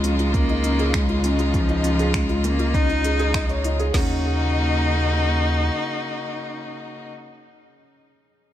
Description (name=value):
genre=piano and strings electronica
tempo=100 BPM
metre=4/4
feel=straight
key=Eb minor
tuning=A4 = 440 Hz
part: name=rich cello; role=melody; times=0.0-7.1 s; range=F3 to Eb4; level=-26 LUFS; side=left 1 dB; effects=digital delay
part: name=warm string quartet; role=sustained chords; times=0.0-7.1 s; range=Db3 to Gb4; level=-27 LUFS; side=left 1 dB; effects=none
part: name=felt-muted upright piano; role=riff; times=0.0-8.5 s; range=Db4 to Eb5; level=-26 LUFS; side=left 1 dB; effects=digital delay
part: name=round analog bass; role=bass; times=0.0-5.7 s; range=Db2 to Eb2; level=-23 LUFS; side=equal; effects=sidechain pumping
part: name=deep house drum kit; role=drums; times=0.0-3.9 s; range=finger snaps, hi-hat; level=-30 LUFS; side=equal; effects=none
part: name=deep house drum kit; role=drums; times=0.3-4.1 s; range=crash cymbal, kick drum, snare drum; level=-24 LUFS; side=equal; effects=none
room=light reverb, small room ambience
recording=none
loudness=-19 LUFS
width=side -12 dB against mid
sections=0.0-3.9 A section; 3.9-6.3 B section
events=drop 0.0-3.9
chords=0.0 Dbadd9; 3.9 Ebm7